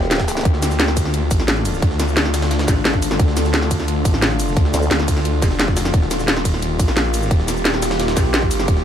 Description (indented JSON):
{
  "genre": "dark technical drum and bass",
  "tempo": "175 BPM",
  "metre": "4/4",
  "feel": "straight",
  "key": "D phrygian",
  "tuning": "A4 = 439 Hz",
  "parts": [
    { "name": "metallic inharmonic drone", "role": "sustained chords", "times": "0.0-8.8 s", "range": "D3 to G4", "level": "-23 LUFS", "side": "left 2 dB", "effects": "chorus, built-in reverb, sidechain pumping" },
    { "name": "formant-sweep wobble bass", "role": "bass", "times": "0.0-0.4, 4.7-4.9 s", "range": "G1 to D2", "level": "-21 LUFS", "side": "equal", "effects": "chorus" },
    { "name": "jungle sampler-style drum kit", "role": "drums", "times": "0.0-8.8 s", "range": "hi-hat, snare drum", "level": "-30 LUFS", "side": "equal", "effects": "none" },
    { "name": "drum and bass drum kit", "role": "drums", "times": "0.1-8.7 s", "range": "hi-hat, ride cymbal, shaker, snare drum", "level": "-21 LUFS", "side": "equal", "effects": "none" },
    { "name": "electronic kick drum", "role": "drums", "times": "0.2-8.7 s", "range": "none", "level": "-18 LUFS", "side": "equal", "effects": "none" },
    { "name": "snarling distorted saw bass", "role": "bass", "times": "0.5-8.8 s", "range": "Eb1 to D2", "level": "-21 LUFS", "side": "equal", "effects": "distortion, overdrive" }
  ],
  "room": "little or no reverb",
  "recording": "none",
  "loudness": "-15 LUFS",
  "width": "side -9 dB against mid",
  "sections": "0.0-8.8 A section",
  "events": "none",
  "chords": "0.5 Dm; 5.9 Eb"
}